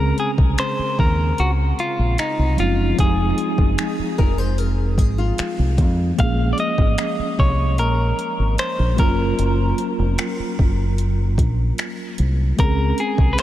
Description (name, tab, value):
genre	contemporary R&B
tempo	75 BPM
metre	4/4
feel	straight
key	Bb minor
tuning	A4 = 440 Hz
part	clean electric guitar	melody	0.0-13.4 s	Eb4 to F5	-24 LUFS	left 1 dB	analog delay
part	mellow tine electric piano	accompaniment	0.0-13.4 s	Db3 to Bb4	-24 LUFS	equal	medium stereo tremolo
part	deep dub fingered electric bass	bass	0.0-13.3 s	F1 to F2	-19 LUFS	equal	none
part	smooth R&B drum kit	drums	0.2-13.4 s	finger snaps, hi-hat, kick drum	-21 LUFS	equal	overdrive
part	nylon-string guitar	arpeggios	4.2-6.1 s	F4 to C5	-30 LUFS	left 4 dB	lush chorus, analog delay
room	light reverb, digital ambience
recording	faint mains hum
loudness	-17 LUFS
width	side -13 dB against mid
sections	0.0-13.4 A section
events	none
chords	0.0 Dbmaj7; 3.0 Fm7; 6.2 Bbm9; 9.0 Gbmaj7; 12.6 Db5